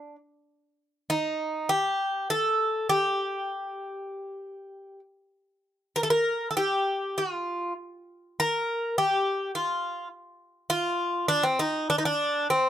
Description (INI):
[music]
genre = fado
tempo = 100 BPM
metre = 4/4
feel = rubato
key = unclear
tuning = A4 = 440 Hz
[part]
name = Greek bouzouki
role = solo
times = 0.0-12.7 s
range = C4 to Bb4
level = -25 LUFS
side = equal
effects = none
[sound]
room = little or no reverb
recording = close, detailed microphones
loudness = -25 LUFS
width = side -10 dB against mid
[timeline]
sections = 0.0-12.7 A section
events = none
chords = none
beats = | 0.48 1.07 1.67 2.27 | 2.87 3.46 4.07 4.70 | 5.33 5.95 6.56 7.16 | 7.76 8.35 8.94 9.52 | 10.10 10.68 11.27 11.87 | 12.47